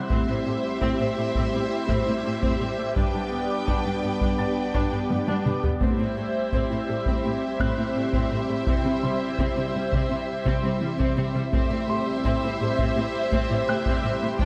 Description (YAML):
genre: cinematic, hybrid orchestral and electronic film score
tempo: 84 BPM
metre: 4/4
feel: straight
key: A dorian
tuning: A4 = 442 Hz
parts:
  - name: warm symphonic violin section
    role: second line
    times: 0.0-14.5 s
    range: B4 to G5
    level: -34 LUFS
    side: equal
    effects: none
  - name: rich studio viola section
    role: accompaniment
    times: 0.0-14.5 s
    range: G3 to G4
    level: -34 LUFS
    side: equal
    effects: none
  - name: phased analog pad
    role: sustained chords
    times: 0.0-14.5 s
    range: B2 to D5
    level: -31 LUFS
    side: equal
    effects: phaser, chorus
  - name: harp-like synth pluck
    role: arpeggios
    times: 0.0-14.5 s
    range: C3 to G4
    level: -34 LUFS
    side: equal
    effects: chorus, digital delay
  - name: warm baby grand piano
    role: texture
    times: 0.0-14.5 s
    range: F#5 to A6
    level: -40 LUFS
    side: equal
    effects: digital delay
  - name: rich symphonic cello section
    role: bass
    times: 0.1-14.5 s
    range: G2 to C3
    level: -32 LUFS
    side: equal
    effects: none
  - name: solo taiko drums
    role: drums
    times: 0.1-14.5 s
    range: none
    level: -30 LUFS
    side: equal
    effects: none
room: moderate concert hall reverb, RT60 2.0 s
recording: none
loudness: -25 LUFS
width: mono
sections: 0.0-14.5 A section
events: drum fill 5.1-5.8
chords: 0.1 Am7; 3.0 G; 5.8 Am7; 8.7 C; 11.5 Am7